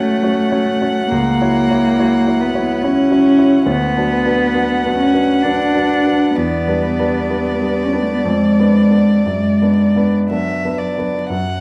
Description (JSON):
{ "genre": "classical, slow romantic movement for piano trio", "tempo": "57-72 BPM", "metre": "3/4", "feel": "rubato", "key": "B minor", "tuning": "A4 = 440 Hz", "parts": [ { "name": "warm violin", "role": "melody", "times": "0.0-11.6 s", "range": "D5 to F#5", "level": "-25 LUFS", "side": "equal", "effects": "none" }, { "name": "warm cello", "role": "second line", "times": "0.0-11.6 s", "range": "F#3 to D4", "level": "-17 LUFS", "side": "equal", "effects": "none" }, { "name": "warm grand piano", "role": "accompaniment", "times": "0.0-11.6 s", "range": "C#2 to C#5", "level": "-22 LUFS", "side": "equal", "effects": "none" } ], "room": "wet recital hall reverb, RT60 1.3 s", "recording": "dark, warm production, vinyl crackle", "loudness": "-15 LUFS", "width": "mono", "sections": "0.0-11.6 A section", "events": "none", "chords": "0.0 F#m/A; 1.1 F#7/C#; 3.7 Bm/D; 6.4 Em7; 8.2 Fdim7; 9.2 Bm/F#" }